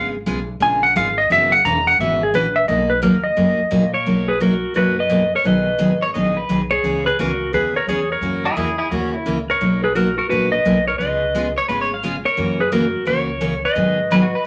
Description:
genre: country, western swing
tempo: 173 BPM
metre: 4/4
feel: swing 64% on 8ths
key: B major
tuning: A4 = 438 Hz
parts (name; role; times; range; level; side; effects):
- clean lap steel guitar; melody; 0.0-14.5 s; F#4 to A#5; -20 LUFS; equal; none
- picked steel-string acoustic guitar; accompaniment; 0.0-14.5 s; B2 to G#4; -23 LUFS; equal; none
- upright bass; bass; 0.0-14.3 s; E1 to A#2; -31 LUFS; equal; none
- pedal steel guitar; second line; 6.0-9.4, 11.6-14.4 s; C#4 to E#5; -24 LUFS; equal; none
room: wet studio reverb, RT60 0.6 s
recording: none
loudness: -18 LUFS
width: mono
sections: 0.0-4.1 A section; 4.1-14.5 B section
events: electric slide guitar solo 0.0-4.1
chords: 0.0 C#7/G#; 1.3 F#7sus4; 2.7 Bmaj7; 5.5 G#m7; 6.8 C#m11; 8.2 F#7; 9.6 Bmaj7; 11.0 C#7; 12.4 F#7; 13.8 G#m7

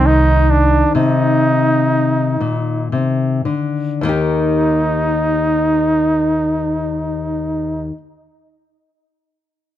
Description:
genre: acoustic folk-pop ballad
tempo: 35-45 BPM (dotted quarters)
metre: 6/8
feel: straight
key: Eb major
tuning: A4 = 442 Hz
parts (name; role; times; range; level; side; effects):
- breathy flugelhorn; melody; 0.0-7.9 s; D4 to Eb4; -17 LUFS; right 2 dB; plate reverb
- nylon-string guitar; accompaniment; 0.0-8.0 s; Eb2 to G4; -17 LUFS; left 4 dB; none
- upright bass; bass; 0.0-0.8 s; C2; -13 LUFS; right 1 dB; none
room: light reverb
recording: none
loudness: -14 LUFS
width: side -12 dB against mid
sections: 0.0-4.0 A section; 4.0-7.4 B section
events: slowing down 0.0-4.0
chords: 0.0 Cm; 1.0 Bbsus24; 4.0 Eb

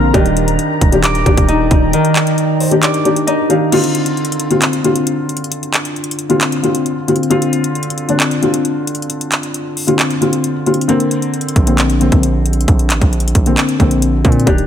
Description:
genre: hip hop, trap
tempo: 134 BPM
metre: 4/4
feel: half-time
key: D phrygian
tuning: A4 = 441 Hz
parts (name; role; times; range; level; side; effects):
- felt-muted upright piano; accompaniment; 0.0-14.7 s; D3 to F5; -15 LUFS; left 2 dB; low-pass filter
- glassy FM pad; sustained chords; 0.0-3.7 s; Eb3 to Bb5; -21 LUFS; equal; ensemble chorus, built-in reverb
- Celtic harp; arpeggios; 0.0-6.0 s; Eb3 to D6; -18 LUFS; right 1 dB; low-pass filter, ping-pong delay
- distorted 808-style bass; bass; 0.0-1.9, 11.6-14.7 s; Eb1 to Bb2; -16 LUFS; right 1 dB; distortion
- mellow brass ensemble; stabs; 0.1-0.5 s; G2 to G3; -23 LUFS; right 7 dB; none
- trap drum kit; drums; 0.1-14.7 s; crash cymbal, handclaps, hi-hat, kick drum; -16 LUFS; equal; none
room: light reverb, small room ambience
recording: none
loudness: -12 LUFS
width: side -9 dB against mid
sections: 0.0-3.7 A section; 3.7-14.7 B section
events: kick muted 1.9-3.7, 10.9-11.3; felt piano fill 2.4-3.7; break 3.7-10.9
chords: 0.1 Ebmaj7; 3.7 Dm7; 10.9 Bbadd9

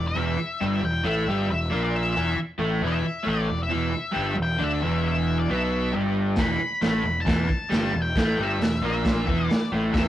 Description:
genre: garage rock duo or trio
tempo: 135 BPM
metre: 4/4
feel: straight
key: E minor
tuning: A4 = 440 Hz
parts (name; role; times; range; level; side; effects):
- octave-fuzz lead guitar; melody; 0.0-10.1 s; D5 to B5; -29 LUFS; left 3 dB; distortion
- crunchy overdriven guitar; riff; 0.0-10.1 s; E2 to D4; -25 LUFS; equal; none
- fuzz picked electric bass; bass; 0.0-10.1 s; E1 to D2; -28 LUFS; equal; overdrive
- vintage drum kit; drums; 6.4-10.1 s; hi-hat, kick drum, snare drum; -25 LUFS; equal; none
room: light reverb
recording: rough rehearsal-room recording, warm saturation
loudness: -22 LUFS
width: side -12 dB against mid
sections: 0.0-10.1 A section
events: none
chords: 0.0 Em

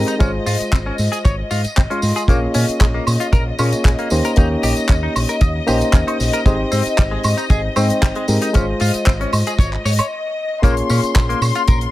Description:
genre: nu-disco, nu disco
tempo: 115 BPM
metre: 4/4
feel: straight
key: Bb dorian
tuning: A4 = 443 Hz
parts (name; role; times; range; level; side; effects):
- bright reed electric piano; accompaniment; 0.0-11.9 s; Ab3 to C6; -21 LUFS; equal; dub echo
- dark studio string section; sustained chords; 0.0-11.9 s; Eb5 to C6; -25 LUFS; left 3 dB; sidechain pumping
- fingered electric bass with an envelope filter; bass; 0.0-11.9 s; Ab1 to Bb2; -20 LUFS; equal; none
- direct-recorded clean electric guitar; riff; 0.1-11.8 s; G3 to Eb5; -25 LUFS; left 2 dB; wide subtle chorus, dub echo
- damped 70s drum kit; drums; 0.1-11.9 s; handclaps, hi-hat, woodblock; -25 LUFS; equal; none
- tambourine; percussion; 0.1-11.8 s; none; -31 LUFS; right 3 dB; none
- kick drum; drums; 0.2-11.8 s; none; -14 LUFS; equal; none
room: small room ambience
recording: none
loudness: -14 LUFS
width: side -16 dB against mid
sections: 0.0-10.6 A section; 10.6-11.9 B section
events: break 10.1-10.6; drop 10.6-11.9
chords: 0.2 Dbmaj7/Ab; 2.3 Bbm7; 4.1 Eb7; 6.5 Abmaj7; 8.5 Dbmaj7/Ab; 10.6 Bbm7

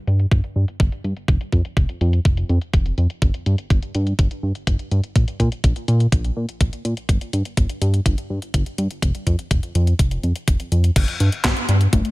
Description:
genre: italo disco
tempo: 124 BPM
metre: 4/4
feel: straight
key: G minor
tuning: A4 = 440 Hz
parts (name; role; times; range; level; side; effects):
- chorused synth bass; bass; 0.1-12.0 s; F1 to Bb2; -19 LUFS; equal; none
- clean 12-bit digital drum machine; drums; 0.1-12.1 s; congas, crash cymbal, handclaps, hi-hat, snare drum; -26 LUFS; left 2 dB; overdrive, low-pass filter on hats, small room ambience, low-pass filter on cymbals, low-pass filter on snare, low-pass filter on perc, gated reverb
- electronic kick drum; drums; 0.3-12.0 s; none; -18 LUFS; equal; overdrive, small room ambience
room: little or no reverb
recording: none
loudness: -18 LUFS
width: side -22 dB against mid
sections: 0.0-11.0 A section; 11.0-12.1 B section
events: none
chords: none

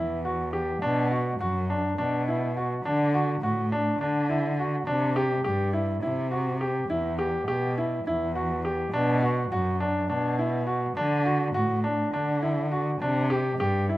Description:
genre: contemporary instrumental, chamber music in an uneven meter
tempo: 207 BPM (eighths)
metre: 7/8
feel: straight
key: E minor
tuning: A4 = 440 Hz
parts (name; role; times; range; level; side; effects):
- bright concert grand piano; arpeggios; 0.0-14.0 s; D4 to G4; -27 LUFS; equal; none
- dark cello; bass; 0.0-14.0 s; E2 to D3; -27 LUFS; equal; none
room: light reverb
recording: close, detailed microphones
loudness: -24 LUFS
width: side -16 dB against mid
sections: 0.0-14.0 A section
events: none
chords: 0.0 Em; 0.8 Bm; 2.8 D; 4.9 C5; 6.9 Em; 8.9 Bm; 11.0 D; 13.0 Csus2

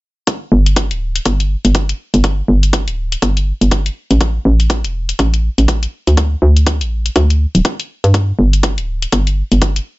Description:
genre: deep house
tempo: 122 BPM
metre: 4/4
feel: swing 59% on 16ths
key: unclear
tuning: A4 = 440 Hz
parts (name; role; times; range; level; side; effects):
- electronic hi-hat; drums; 0.3-9.8 s; none; -22 LUFS; left 5 dB; none
- electronic kick drum; drums; 0.3-9.7 s; none; -18 LUFS; right 1 dB; high-pass filter on kick, high-pass filter on room
- hollow knocking FM bass; bass; 0.5-9.8 s; D1 to G2; -12 LUFS; equal; tube saturation, sidechain pumping
room: little or no reverb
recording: nothing above 7.8 kHz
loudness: -12 LUFS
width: side -20 dB against mid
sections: 0.3-10.0 A section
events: none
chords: none

